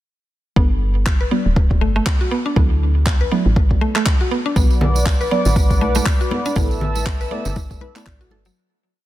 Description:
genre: afro house.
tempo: 120 BPM.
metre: 4/4.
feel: swing 58% on 16ths.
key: unclear.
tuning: A4 = 436 Hz.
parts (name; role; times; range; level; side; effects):
mallet-like synth pluck; arpeggios; 0.6-8.6 s; F#3 to B4; -24 LUFS; right 1 dB; chorus, sidechain pumping, tape echo.
deep mellow chord stab; stabs; 0.6-8.5 s; F#3 to D5; -26 LUFS; right 2 dB; chorus, phaser, sidechain pumping, tape echo.
woody FM bass; bass; 0.6-8.5 s; D1 to D2; -19 LUFS; equal; sidechain pumping.
electronic kick drum; drums; 0.6-8.2 s; none; -17 LUFS; equal; overdrive.
electronic handclaps; drums; 1.1-8.2 s; none; -26 LUFS; equal; overdrive.
warm analog pad; sustained chords; 4.6-8.5 s; B4 to E6; -25 LUFS; right 1 dB; chorus, sidechain pumping.
tambourine; percussion; 4.6-8.5 s; none; -32 LUFS; right 5 dB; none.
congas; percussion; 4.8-8.5 s; none; -25 LUFS; left 1 dB; none.
room: little or no reverb.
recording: dense, heavily limited modern master.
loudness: -15 LUFS.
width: side -14 dB against mid.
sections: 0.6-8.6 groove.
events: filter sweep on synth stab 0.6-8.6; fade-out 5.9-8.6.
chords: 0.6 Gmaj7; 2.6 Dadd9; 4.6 Bm; 6.6 Asus2.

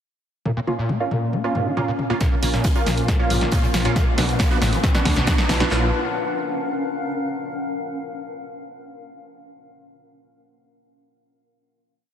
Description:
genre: driving peak-time techno.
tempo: 137 BPM.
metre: 4/4.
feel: straight.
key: Bb minor.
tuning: A4 = 440 Hz.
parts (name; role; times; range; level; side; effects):
screaming distorted acid line; riff; 0.5-5.9 s; Ab2 to B3; -27 LUFS; left 1 dB; distortion, analog chorus, sidechain pumping, ping-pong delay.
punchy analog drum machine; drums; 0.5-5.7 s; hi-hat, snare drum, toms; -25 LUFS; equal; none.
granular cloud pad; texture; 1.2-7.4 s; Db4 to F5; -28 LUFS; left 2 dB; built-in reverb, sidechain pumping.
rave stab; stabs; 0.7-5.9 s; Bb3 to F#4; -26 LUFS; right 2 dB; chorus, built-in reverb, sidechain pumping, ping-pong delay.
metallic inharmonic drone; drone; 2.8-5.8 s; Bb2 to F3; -32 LUFS; left 2 dB; chorus, built-in reverb, sidechain pumping.
gated 80s drum kit; drums; 2.2-5.6 s; hi-hat, snare drum; -35 LUFS; right 2 dB; high-pass filter on hats, high-pass filter on snare, high-pass filter on room.
punchy analog drum machine; drums; 2.2-5.8 s; handclaps, kick drum, snare drum; -20 LUFS; equal; none.
riser; sound effects; 4.1-5.7 s; none; -31 LUFS; right 1 dB; none.
dark detuned saw bass; bass; 2.4-5.9 s; A1 to D2; -24 LUFS; equal; sidechain pumping.
room: moderate lush hall reverb, RT60 1.9 s.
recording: heavily compressed radio sound.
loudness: -19 LUFS.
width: side -9 dB against mid.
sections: 0.5-2.2 intro; 2.2-5.7 build; 5.7-7.5 final chord.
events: filter sweep on synth stab 0.5-2.2; build-up 2.2-5.7; drum fill 2.2-5.7; filter sweep on acid bass 2.2-5.7; riser 4.1-5.7.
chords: 0.5 Bbm; 4.0 Bm; 5.7 Bbm.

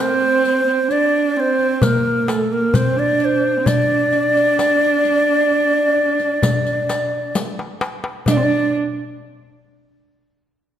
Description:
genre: Arabic maqam ensemble.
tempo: 130 BPM (eighths).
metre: 10/8.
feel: straight.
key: unclear.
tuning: A4 = 440 Hz.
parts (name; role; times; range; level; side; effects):
breathy ney; melody; 0.0-8.7 s; A4 to Eb5; -17 LUFS; left 1 dB; slapback echo.
dark viola; second line; 0.0-8.7 s; A3 to D4; -20 LUFS; right 6 dB; none.
darbuka; percussion; 0.4-8.7 s; none; -22 LUFS; left 2 dB; none.
riq; percussion; 0.5-8.7 s; none; -25 LUFS; left 3 dB; none.
room: moderate concert hall reverb, RT60 1.8 s.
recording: none.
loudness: -15 LUFS.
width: side -10 dB against mid.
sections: 0.0-8.3 A section; 8.3-10.8 B section.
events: drum fill 7.4-8.3.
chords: none.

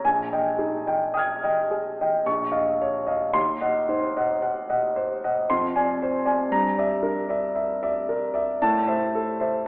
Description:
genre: classical, impressionist solo piano.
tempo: 56 BPM.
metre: 3/4.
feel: uneven beats, rubato.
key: unclear.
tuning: A4 = 441 Hz.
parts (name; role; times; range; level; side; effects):
warm concert grand piano; solo; 0.0-9.7 s; Bb1 to Ab6; -21 LUFS; equal; none.
room: wet scoring stage reverb, RT60 1.8 s.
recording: heard from further back in the room, telephone sound.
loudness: -21 LUFS.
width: side -27 dB against mid.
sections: 0.0-9.7 A section.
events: none.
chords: 0.0 Fm9/Bb; 2.3 Db69/Bb; 3.3 Ebm6; 5.5 Fm6; 6.5 Gm6; 8.6 Am.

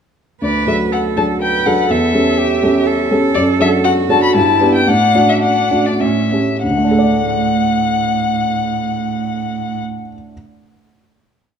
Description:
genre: quick classical-period movement for piano trio.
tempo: 94-125 BPM.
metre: 3/4.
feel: rubato.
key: D major.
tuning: A4 = 438 Hz.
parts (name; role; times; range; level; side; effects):
warm violin; melody; 0.4-9.8 s; D5 to B5; -17 LUFS; left 6 dB; none.
rich cello; second line; 0.4-9.8 s; A2 to B4; -20 LUFS; right 8 dB; none.
warm grand piano; accompaniment; 0.4-10.3 s; D2 to D5; -15 LUFS; equal; none.
room: wet recital hall reverb, RT60 1.6 s.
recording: dark, warm production.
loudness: -12 LUFS.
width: side -7 dB against mid.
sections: 0.4-6.6 theme; 6.6-10.3 final chord.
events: slowing down 2.6-6.6.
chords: 0.4 D; 1.9 A7/E; 3.3 D/F#; 4.3 G; 4.9 D/A; 6.0 A7; 6.6 D.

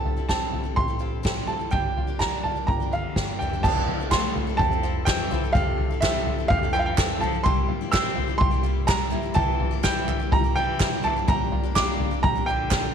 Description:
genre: indie folk with a building arrangement.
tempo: 126 BPM.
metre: 4/4.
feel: straight.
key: F major.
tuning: A4 = 441 Hz.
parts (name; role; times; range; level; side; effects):
clear upright piano; melody; 0.0-12.9 s; E5 to E6; -27 LUFS; right 3 dB; none.
fingerpicked plugged-in steel-string acoustic guitar; accompaniment; 0.0-3.6 s; G2 to Bb4; -41 LUFS; left 11 dB; none.
picked steel-string acoustic guitar; accompaniment; 0.0-12.9 s; G2 to A4; -34 LUFS; left 13 dB; none.
open-back banjo; arpeggios; 0.0-12.9 s; E4 to G4; -33 LUFS; right 10 dB; none.
soft-mallet drum kit; drums; 0.1-12.8 s; crash cymbal, kick drum, snare drum, toms; -24 LUFS; equal; none.
hollow-body short-scale picked electric bass; bass; 0.8-12.9 s; F1 to C2; -33 LUFS; left 1 dB; none.
warm cello; second line; 2.9-12.9 s; C3 to C4; -32 LUFS; left 11 dB; none.
group handclap; percussion; 4.1-12.8 s; none; -33 LUFS; right 15 dB; none.
room: light reverb, studio reverb.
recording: 1960s-style stereo with parts hard left and right.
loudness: -21 LUFS.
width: side -7 dB against mid.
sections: 0.0-3.6 A section; 3.6-12.9 A section.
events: none.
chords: 0.0 Am7; 1.7 Gm; 3.6 Fmaj7; 7.5 C7; 11.3 Gm/Bb.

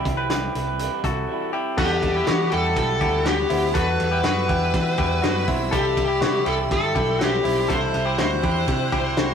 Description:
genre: jangly indie pop.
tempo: 122 BPM.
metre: 4/4.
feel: straight.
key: E minor.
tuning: A4 = 443 Hz.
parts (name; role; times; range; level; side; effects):
electric guitar through a small old amp; accompaniment; 0.0-9.3 s; E2 to F#4; -29 LUFS; right 3 dB; none.
direct-recorded clean electric guitar; arpeggios; 0.0-9.3 s; B3 to F#5; -26 LUFS; left 1 dB; ping-pong delay.
picked electric bass; bass; 0.1-9.3 s; G1 to E3; -26 LUFS; equal; none.
loose indie drum kit; drums; 0.1-9.3 s; crash cymbal, hi-hat, kick drum, ride cymbal, snare drum; -26 LUFS; equal; none.
high-gain lead guitar; melody; 1.8-9.3 s; G4 to C5; -23 LUFS; left 2 dB; distortion.
warm studio string section; sustained chords; 1.8-9.3 s; G3 to F#6; -34 LUFS; equal; none.
room: moderate studio reverb, RT60 0.5 s.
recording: rough rehearsal-room recording.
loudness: -19 LUFS.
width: side -7 dB against mid.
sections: 0.0-1.8 A section; 1.8-9.3 B section.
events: none.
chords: 0.0 Emadd9; 5.7 C.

